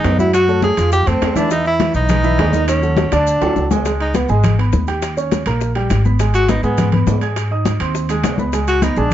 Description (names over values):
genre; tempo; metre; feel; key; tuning
Afro-Cuban jazz; 205 BPM; 4/4; straight; C# minor; A4 = 440 Hz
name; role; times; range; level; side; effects
breathy tenor saxophone; melody; 0.0-9.1 s; G#3 to G#4; -18 LUFS; equal; none
warm concert grand piano; accompaniment; 0.0-9.1 s; D3 to G#6; -20 LUFS; right 2 dB; none
upright bass; bass; 0.0-9.1 s; G#1 to G#2; -18 LUFS; equal; none
bongos; percussion; 0.0-9.0 s; none; -25 LUFS; left 7 dB; none
congas; percussion; 0.0-9.1 s; none; -22 LUFS; left 3 dB; none
maracas; percussion; 0.0-9.1 s; none; -36 LUFS; left 9 dB; none
timbales; percussion; 0.0-9.1 s; none; -27 LUFS; right 5 dB; none
room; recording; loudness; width
moderate studio ambience, RT60 0.5 s; dark, warm production, nothing above 7.8 kHz; -14 LUFS; side -11 dB against mid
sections
0.0-3.9 A section; 3.9-9.1 B section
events
drum fill 3.0-3.9; tenor saxophone solo 3.9-9.1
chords
0.3 F#m; 0.9 F; 1.5 Emaj7; 2.7 D#m7b5; 3.3 D; 3.9 C#sus2; 5.0 D#7; 6.2 G#m; 7.4 G#; 8.5 C#5